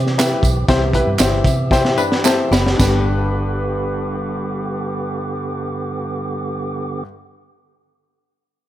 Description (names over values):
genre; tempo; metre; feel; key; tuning
uptempo 1960s-style soul; 107-123 BPM; 4/4; straight; G major; A4 = 440 Hz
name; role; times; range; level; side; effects
tonewheel organ; sustained chords; 0.0-7.0 s; D3 to G4; -25 LUFS; right 3 dB; slow rotary speaker
vintage muted fingered electric bass; bass; 0.0-7.0 s; F#1 to C3; -21 LUFS; right 1 dB; none
crunchy breakbeat drum kit; drums; 0.1-2.9 s; hi-hat, kick drum, snare drum, splash cymbal; -18 LUFS; right 1 dB; none
warm grand piano; accompaniment; 0.2-7.0 s; G2 to B5; -21 LUFS; left 3 dB; none
handclaps and tambourine; percussion; 0.2-3.1 s; none; -26 LUFS; right 8 dB; none
hollow-body jazz guitar; riff; 2.0-3.0 s; B3 to B4; -22 LUFS; left 4 dB; none
room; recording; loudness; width
light reverb, small room ambience; none; -16 LUFS; side -13 dB against mid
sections
0.0-2.8 A section; 2.8-7.3 B section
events
slowing down 0.0-2.8; grand piano fill 1.2-2.8; drum fill 1.7-2.8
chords
0.0 C; 2.8 G